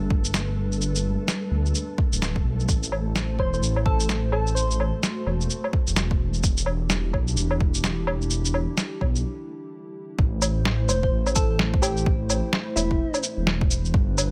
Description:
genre	future garage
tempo	128 BPM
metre	4/4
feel	swing 60% on 16ths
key	A dorian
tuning	A4 = 438 Hz
part	dark analog pad	sustained chords	0.0-14.3 s	G3 to C5	-36 LUFS	equal	chorus, sidechain pumping
part	dark detuned saw bass	bass	0.0-14.3 s	D1 to D2	-27 LUFS	equal	sidechain pumping
part	flickering grainy texture	texture	0.0-9.2 s	A3 to A4	-43 LUFS	equal	built-in reverb
part	electronic kick drum	drums	0.1-14.1 s	none	-26 LUFS	equal	overdrive, studio ambience
part	electronic shaker, snare drum, woodblock and cabasa	drums	0.2-14.3 s	none	-28 LUFS	equal	studio ambience
part	soft struck synth lead	melody	3.4-4.9, 10.9-13.2 s	E4 to C5	-32 LUFS	equal	chorus, delay
room	little or no reverb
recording	none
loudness	-24 LUFS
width	mono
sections	0.0-10.2 A section; 10.2-14.3 B section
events	break 9.2-10.2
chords	0.0 G; 2.7 Am; 6.4 Em7; 10.2 Am

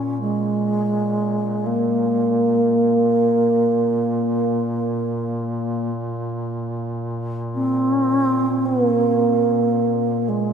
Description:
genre	caucasian folk, Caucasian lament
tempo	free time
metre	none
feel	none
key	unclear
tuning	A4 = 440 Hz
part	mellow wooden-headed alto flute	melody	0.0-10.5 s	Ab3 to Db4	-18 LUFS	right 1 dB	none
part	warm duduk	drone	0.0-10.5 s	Bb2	-27 LUFS	right 1 dB	none
room	wet cathedral reverb, RT60 6.3 s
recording	none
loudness	-18 LUFS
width	side -7 dB against mid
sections	0.0-10.5 A section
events	none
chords	none

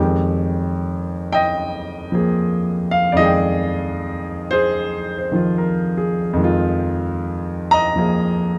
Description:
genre	solo jazz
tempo	75 BPM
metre	4/4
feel	swing 68% on 8ths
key	F minor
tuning	A4 = 441 Hz
part	warm grand piano	solo	0.0-8.6 s	F2 to Bb5	-20 LUFS	equal	none
room	light reverb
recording	close, detailed microphones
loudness	-20 LUFS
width	mono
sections	0.0-8.6 A section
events	none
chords	0.0 Fm9

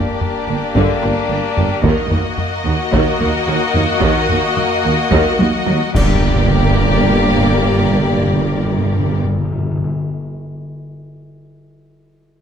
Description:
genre	cinematic, epic orchestral film score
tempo	109 BPM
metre	4/4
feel	straight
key	G harmonic minor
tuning	A4 = 440 Hz
part	warm symphonic violin section	melody	0.0-9.2 s	D5 to Eb5	-24 LUFS	left 3 dB	none
part	rich symphonic violin section	second line	0.0-9.2 s	Gb4 to G4	-24 LUFS	left 3 dB	none
part	rich symphonic string section	sustained chords	0.0-9.2 s	Bb3 to Eb5	-24 LUFS	left 3 dB	none
part	warm French horn section	sustained chords	0.0-9.2 s	Bb3 to G4	-24 LUFS	left 4 dB	none
part	dark tuba	bass	0.0-9.2 s	G1 to Eb2	-22 LUFS	right 5 dB	none
part	taiko ensemble	drums	0.2-7.0 s	none	-20 LUFS	left 1 dB	none
part	warm symphonic viola section	accompaniment	0.5-9.2 s	D3 to Bb3	-23 LUFS	equal	none
part	warm symphonic cello section	bass	0.5-9.2 s	Eb2 to G2	-22 LUFS	right 3 dB	none
part	warm symphonic double bass section	bass	0.5-9.2 s	G1 to Eb2	-22 LUFS	right 4 dB	none
part	clash cymbals and concert bass drum	percussion	6.0-7.3 s	none	-24 LUFS	equal	none
part	timpani	percussion	6.0-9.9 s	G2	-20 LUFS	left 2 dB	none
part	sub drop	sound effects	6.0-9.9 s	none	-26 LUFS	left 1 dB	none
room	moderate scoring stage reverb, RT60 1.7 s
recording	none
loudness	-13 LUFS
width	side -8 dB against mid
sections	0.0-6.2 A section; 6.2-8.4 B section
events	drum fill 5.4-6.2; band accent 6.2-6.8; impact 6.2-8.4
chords	0.0 Gm; 1.8 Ebm; 6.0 Gm

